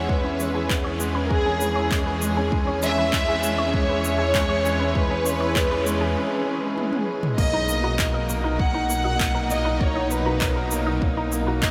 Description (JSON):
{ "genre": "piano and strings electronica", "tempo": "99 BPM", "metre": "4/4", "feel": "straight", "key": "B major", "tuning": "A4 = 440 Hz", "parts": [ { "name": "rich studio violin section", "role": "melody", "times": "0.0-11.7 s", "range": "G#4 to F#5", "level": "-28 LUFS", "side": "equal", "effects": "none" }, { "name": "rich symphonic string section", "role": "sustained chords", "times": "0.0-11.7 s", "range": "A#2 to G#4", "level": "-33 LUFS", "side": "equal", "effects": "sidechain pumping, low-pass filter" }, { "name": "analog pluck", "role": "arpeggios", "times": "0.0-11.5 s", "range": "G#4 to D#5", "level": "-36 LUFS", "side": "equal", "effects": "none" }, { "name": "clear upright piano", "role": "riff", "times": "0.0-11.7 s", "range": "G#3 to A#4", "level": "-29 LUFS", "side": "equal", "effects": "delay" }, { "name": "dark detuned saw bass", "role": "bass", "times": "0.0-11.7 s", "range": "B1 to E2", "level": "-31 LUFS", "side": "equal", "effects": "sidechain pumping" }, { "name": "electronic kick drum", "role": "drums", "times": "0.1-11.7 s", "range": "none", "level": "-27 LUFS", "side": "equal", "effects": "studio reverb" }, { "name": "deep house drum kit", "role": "drums", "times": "0.4-11.7 s", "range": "crash cymbal, handclaps, shaker, toms", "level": "-33 LUFS", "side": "equal", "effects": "studio reverb" } ], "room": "wet huge ambient reverb, RT60 8.1 s", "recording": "dreamy mix soaked in reverb", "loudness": "-23 LUFS", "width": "mono", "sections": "0.0-7.4 A section; 7.4-11.7 B section", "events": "build-up 0.0-7.4; break 6.2-7.4; drum fill 6.8-7.4; drop 7.4-11.7", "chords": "0.0 E6; 7.4 Bmaj7" }